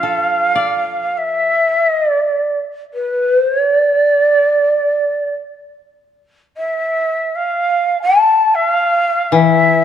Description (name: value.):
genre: japanese traditional, Japanese chamber music.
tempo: free time.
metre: none.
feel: none.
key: D minor.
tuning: A4 = 439 Hz.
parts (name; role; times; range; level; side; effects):
breathy shakuhachi; melody; 0.0-9.8 s; D5 to A5; -13 LUFS; right 1 dB; none.
koto; accompaniment; 0.0-2.5, 9.3-9.8 s; E3 to D5; -16 LUFS; left 7 dB; none.
room: moderate scoring stage reverb, RT60 1.6 s.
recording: dark, warm production.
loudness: -13 LUFS.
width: side -9 dB against mid.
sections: 0.0-9.8 A section.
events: none.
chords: none.